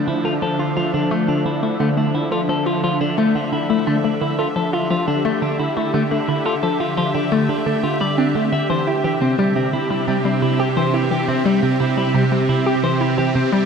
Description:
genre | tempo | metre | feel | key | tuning
ambient, sequencer-driven space music | 87 BPM | 4/4 | straight | unclear | A4 = 440 Hz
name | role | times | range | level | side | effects
evolving wavetable pad | sustained chords | 0.0-13.7 s | C3 to E5 | -20 LUFS | right 1 dB | ensemble chorus, built-in reverb
clean electric guitar | arpeggios | 0.0-13.7 s | G3 to E5 | -22 LUFS | left 2 dB | auto-pan, tape echo
hollow square pluck | riff | 0.1-13.6 s | C3 to A4 | -22 LUFS | equal | chorus, phaser, tape echo
room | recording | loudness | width
moderate plate reverb, RT60 3.1 s | none | -16 LUFS | side -6 dB against mid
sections
0.0-13.7 A section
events
none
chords
0.0 Dmadd9; 8.7 C

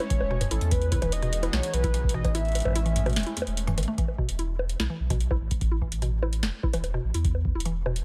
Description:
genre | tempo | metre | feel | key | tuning
IDM | 147 BPM | 4/4 | straight | E major | A4 = 437 Hz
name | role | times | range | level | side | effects
warbly nostalgic lead | melody | 0.0-3.6 s | A4 to E5 | -36 LUFS | equal | analog chorus, vintage 12-bit sampler grit, dub echo
warbly tape-like pad | sustained chords | 0.0-4.0 s | E3 to G#4 | -40 LUFS | equal | chorus, built-in reverb, phaser
mallet-like synth pluck | arpeggios | 0.0-7.9 s | E2 to E4 | -36 LUFS | equal | chorus
booming analog drum machine | drums | 0.0-8.0 s | bongos, hi-hat, snare drum, toms | -34 LUFS | equal | none
electronic kick drum | drums | 0.1-7.5 s | none | -30 LUFS | equal | none
warm sub bass | bass | 0.2-8.0 s | E1 to E2 | -30 LUFS | equal | none
room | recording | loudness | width
digital ambience | none | -27 LUFS | mono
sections
0.0-4.0 A section; 4.0-8.0 B section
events
kick drops out 2.3-4.0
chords
0.0 Amaj7; 0.7 Emaj9; 2.3 Amaj7; 4.0 E5

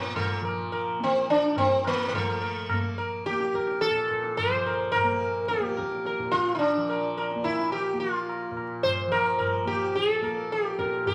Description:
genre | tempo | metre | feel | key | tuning
indian classical, Hindustani | 107 BPM | 4/4 | straight | Bb raga yaman | A4 = 440 Hz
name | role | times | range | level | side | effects
sitar | melody | 0.0-11.1 s | A3 to C5 | -27 LUFS | equal | none
tanpura | drone | 0.0-11.1 s | Bb2 to Bb3 | -38 LUFS | equal | none
tabla | percussion | 0.2-11.1 s | none | -37 LUFS | equal | none
room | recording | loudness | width
wet large studio reverb, RT60 0.9 s | vinyl crackle | -27 LUFS | mono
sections
0.0-2.1 A section; 2.1-11.1 B section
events
none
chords
none

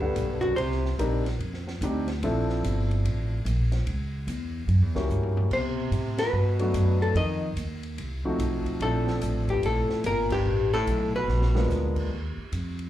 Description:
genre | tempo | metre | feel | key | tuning
jazz, small-group swing and bop | 146 BPM | 4/4 | swing 64% on 8ths | unclear | A4 = 440 Hz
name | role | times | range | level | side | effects
archtop guitar, miked and amplified | melody | 0.0-0.9, 5.5-11.9 s | F#4 to Eb5 | -29 LUFS | left 3 dB | slapback echo
warm baritone saxophone | second line | 0.0-0.9, 5.5-11.9 s | F#2 to Eb3 | -33 LUFS | right 2 dB | slapback echo
warm grand piano | accompaniment | 0.0-12.1 s | F3 to F#5 | -30 LUFS | left 1 dB | slapback echo
upright bass | bass | 0.0-12.9 s | G1 to B2 | -26 LUFS | equal | none
open jazz drum kit | drums | 0.0-12.9 s | crash cymbal, hi-hat, kick drum, ride cymbal, snare drum, toms | -38 LUFS | equal | none
room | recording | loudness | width
small room reverb | live gig heard through the venue's PA, club reverb | -24 LUFS | side -13 dB against mid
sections
0.0-12.1 A section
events
drum fill 5.1-5.5, 11.3-11.7; band accent 6.1, 10.3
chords
0.0 Gmaj7; 0.6 Cm7; 1.4 Fsus2; 2.2 Bbmaj9#11; 3.9 C#m; 4.7 F#7b9; 5.5 Bm7; 7.2 F7b9; 8.8 Bbmaj9; 10.5 Gadd9/A; 11.3 Bb7b9; 12.1 Ebsus2

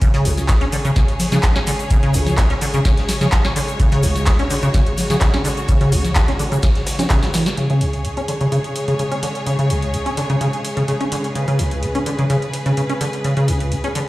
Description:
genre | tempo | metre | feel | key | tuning
acid house | 127 BPM | 4/4 | straight | unclear | A4 = 439 Hz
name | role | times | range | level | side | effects
clear studio string section | sustained chords | 0.0-14.1 s | C#3 to C#5 | -24 LUFS | equal | sidechain pumping
liquid acid bass | riff | 0.0-14.0 s | C#2 to C#4 | -19 LUFS | equal | overdrive, analog chorus, sidechain pumping, digital delay
booming analog drum machine | drums | 0.0-14.1 s | congas, handclaps, hi-hat, snare drum | -24 LUFS | equal | none
electronic kick drum | drums | 0.0-7.2 s | none | -17 LUFS | equal | none
vintage drum kit | drums | 0.0-7.6 s | hi-hat, shaker, snare drum | -33 LUFS | equal | none
egg shaker | percussion | 0.0-7.6 s | none | -34 LUFS | left 4 dB | none
room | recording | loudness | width
light reverb, studio ambience | played on a big sound system in a bare room, stone room reverb | -16 LUFS | side -17 dB against mid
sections
0.0-7.6 A section; 7.6-14.1 B section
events
drum fill 7.2-7.6; band accent 7.5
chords
0.0 C#5

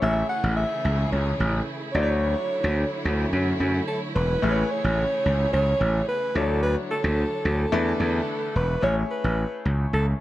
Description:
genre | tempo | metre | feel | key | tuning
funk | 109 BPM | 4/4 | straight | A major | A4 = 440 Hz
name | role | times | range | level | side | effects
breathy alto saxophone | melody | 0.0-10.1 s | A4 to F#5 | -26 LUFS | right 1 dB | slapback echo
bright grand piano | accompaniment | 0.0-10.2 s | F3 to C#5 | -32 LUFS | left 5 dB | none
warm studio string section | sustained chords | 0.0-8.8 s | C#3 to C#5 | -33 LUFS | right 1 dB | none
gritty slap bass | bass | 0.0-10.1 s | E1 to F#2 | -23 LUFS | equal | overdrive
room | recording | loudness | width
small room ambience | none | -22 LUFS | side -15 dB against mid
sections
0.0-8.8 A section; 8.8-10.2 A section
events
none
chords
0.0 Amaj7; 1.9 Dmaj9; 4.4 Amaj7; 6.4 Dmaj9; 7.7 E7sus4; 8.8 Amaj7

